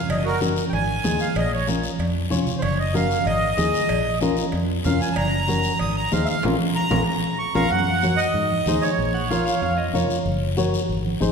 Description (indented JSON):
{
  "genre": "latin, cumbia",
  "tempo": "189 BPM",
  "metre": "4/4",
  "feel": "straight",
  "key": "Bb minor",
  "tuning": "A4 = 440 Hz",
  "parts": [
    { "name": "accordion", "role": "melody", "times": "0.0-9.7 s", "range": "Gb4 to Eb6", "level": "-24 LUFS", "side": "right 2 dB", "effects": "none" },
    { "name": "fingered electric bass", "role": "bass", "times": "0.1-11.3 s", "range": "Gb1 to Ab2", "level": "-26 LUFS", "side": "equal", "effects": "none" },
    { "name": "cowbell and timbales", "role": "percussion", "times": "0.1-7.6 s", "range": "none", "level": "-33 LUFS", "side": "right 2 dB", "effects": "none" },
    { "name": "guiro", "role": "percussion", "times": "0.1-11.3 s", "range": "none", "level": "-34 LUFS", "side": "left 6 dB", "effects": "none" },
    { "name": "flamenco guitar", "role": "accompaniment", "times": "0.4-11.3 s", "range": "C4 to Db5", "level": "-26 LUFS", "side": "left 4 dB", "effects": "none" },
    { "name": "congas", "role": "percussion", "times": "0.4-11.3 s", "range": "none", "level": "-27 LUFS", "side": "right 2 dB", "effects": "none" },
    { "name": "electric guitar at the edge of break-up", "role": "second line", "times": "9.1-10.5 s", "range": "Db5 to Gb5", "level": "-28 LUFS", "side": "right 1 dB", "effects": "none" }
  ],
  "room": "wet scoring stage reverb, RT60 1.8 s",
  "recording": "recorded in a church or concert hall",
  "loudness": "-19 LUFS",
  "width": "side -6 dB against mid",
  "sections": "0.0-7.7 A section; 7.7-11.3 B section",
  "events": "accordion solo 0.0-7.7; band accent 6.4-7.7; drum fill 7.1-7.7",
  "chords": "0.1 Gb; 0.7 Ab; 1.4 Bbm; 2.6 Gb; 3.3 Ab; 3.9 Bbm; 5.2 Gb; 5.8 Ab; 6.4 Bbm; 7.7 Gb; 8.4 Ab; 9.0 Bbm; 10.3 Gb"
}